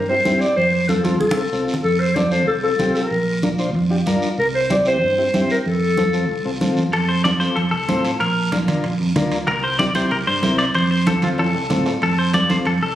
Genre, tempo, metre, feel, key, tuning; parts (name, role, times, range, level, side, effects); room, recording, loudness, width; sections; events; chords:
latin, cumbia; 189 BPM; 4/4; straight; F major; A4 = 442 Hz
mellow clarinet; second line; 0.0-6.6 s; F4 to D5; -19 LUFS; left 1 dB
fingered electric bass; bass; 0.0-12.9 s; Bb1 to A2; -22 LUFS; right 1 dB
combo organ; accompaniment; 0.1-12.7 s; C4 to C5; -24 LUFS; left 2 dB
congas; percussion; 0.3-12.7 s; -24 LUFS; right 1 dB
guiro; percussion; 0.3-13.0 s; -33 LUFS; right 2 dB
clean electric guitar; melody; 6.9-13.0 s; F4 to D5; -20 LUFS; left 1 dB; spring reverb, plate reverb
timbales; percussion; 6.9-12.8 s; -31 LUFS; right 4 dB
moderate studio reverb, RT60 0.6 s; recorded on a phone in the room, studio reverb, compression; -16 LUFS; side -12 dB against mid
0.0-6.9 A section; 6.9-13.0 B section
clarinet solo 0.0-6.9; drum fill 1.2-1.8, 11.4-12.0
0.0 C; 0.6 F; 3.1 Bb; 4.4 C; 5.7 F; 8.2 Bb; 9.5 C7; 10.7 F